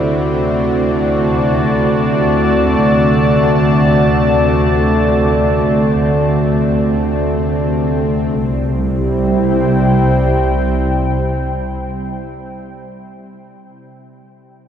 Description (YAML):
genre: ambient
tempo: free time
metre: none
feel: none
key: C lydian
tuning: A4 = 438 Hz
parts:
  - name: warm analog pad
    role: sustained chords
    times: 0.0-12.6 s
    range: C3 to A5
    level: -14 LUFS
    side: equal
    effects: chorus
  - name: dark chamber double bass section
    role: bass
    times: 0.0-11.8 s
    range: C2 to D2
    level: -19 LUFS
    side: equal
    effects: none
  - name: bowed-like drone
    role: drone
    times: 0.0-11.9 s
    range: C3 to C4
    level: -22 LUFS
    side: equal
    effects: built-in reverb
room: wet huge ambient reverb, RT60 7.3 s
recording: none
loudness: -12 LUFS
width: side -8 dB against mid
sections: 0.0-8.4 A section; 8.4-13.0 B section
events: none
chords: 0.0 D; 8.4 C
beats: free time